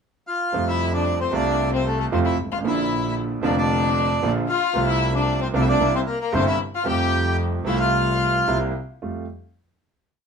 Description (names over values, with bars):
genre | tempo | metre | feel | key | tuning
tango | 114 BPM | 4/4 | rubato | F major | A4 = 440 Hz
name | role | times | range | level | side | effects
bandoneon | melody | 0.3-8.6 s | A3 to G5 | -24 LUFS | equal | none
clear concert grand piano | accompaniment | 0.5-9.2 s | F1 to F4 | -24 LUFS | right 3 dB | none
clear double bass | bass | 0.5-9.3 s | F1 to F2 | -26 LUFS | equal | none
warm violin | second line | 0.7-8.6 s | A3 to G4 | -27 LUFS | left 9 dB | none
room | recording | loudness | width
moderate studio reverb, RT60 0.5 s | minimal, uncompressed stereo recording | -19 LUFS | side -6 dB against mid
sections
0.0-0.5 pickup bar; 0.5-9.0 A section; 9.0-10.3 final chord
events
none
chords
0.0 N.C.; 0.5 Fadd9; 2.7 Bb; 4.8 F/C; 5.8 C7; 6.9 Fadd9; 8.5 C7; 9.0 Fadd9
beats
0.01 | 0.54 1.07 1.60 2.13 | 2.65 3.17 3.70 4.23 | 4.75 5.28 5.80 6.33 | 6.86 7.40 7.93 8.48 | 9.02